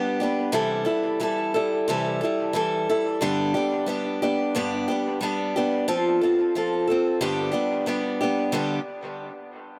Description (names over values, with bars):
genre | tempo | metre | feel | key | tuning
rock | 90 BPM | 4/4 | straight | G major | A4 = 440 Hz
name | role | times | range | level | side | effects
picked acoustic archtop guitar | solo | 0.0-8.8 s | G2 to A4 | -25 LUFS | equal | dub echo
room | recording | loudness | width
light reverb | echo-heavy mix | -24 LUFS | mono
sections
0.0-8.5 A section; 8.5-9.8 B section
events
none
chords
0.0 G; 0.5 C6; 3.2 G; 5.9 F; 7.2 G